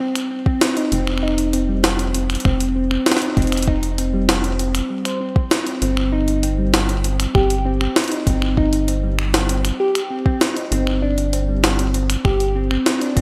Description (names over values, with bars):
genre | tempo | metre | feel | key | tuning
IDM | 98 BPM | 4/4 | straight | unclear | A4 = 438 Hz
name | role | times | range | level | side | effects
harp-like synth pluck | arpeggios | 0.0-13.2 s | G3 to C5 | -24 LUFS | equal | chorus, delay
jungle sampler-style drum kit | drums | 0.2-13.2 s | finger snaps, hi-hat, snare drum | -23 LUFS | equal | gated reverb
electronic kick drum | drums | 0.5-13.2 s | none | -20 LUFS | equal | none
rubbery square bass | bass | 0.9-13.2 s | F1 to G1 | -24 LUFS | equal | none
room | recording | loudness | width
moderate plate reverb, RT60 3.1 s | bright 1980s-style digital production | -19 LUFS | mono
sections
0.0-13.2 A section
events
none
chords
0.0 Cm; 0.9 F5; 5.8 Eb/G; 10.7 G5